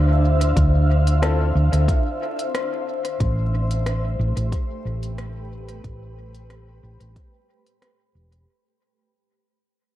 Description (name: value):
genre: ambient dub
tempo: 91 BPM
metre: 4/4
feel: straight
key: unclear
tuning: A4 = 442 Hz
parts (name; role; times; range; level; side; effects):
- granular cloud pad; sustained chords; 0.0-8.5 s; A3 to F5; -27 LUFS; left 1 dB; built-in reverb
- hollow-body short-scale fingered electric bass; bass; 0.0-8.4 s; E1 to D2; -19 LUFS; equal; tube saturation
- organic electronic drum kit; drums; 0.4-8.4 s; hi-hat, rim click; -34 LUFS; left 1 dB; overdrive, dub echo
- electronic kick drum; drums; 0.6-7.3 s; none; -22 LUFS; equal; none
- warm upright piano; stabs; 1.2-1.4 s; C4 to A4; -33 LUFS; left 4 dB; dub echo
room: light reverb, digital ambience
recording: dark, warm production, vinyl crackle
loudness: -18 LUFS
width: side -13 dB against mid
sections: 0.0-8.5 A section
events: fade-out 0.0-8.5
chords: 0.0 Dm9; 3.2 Am9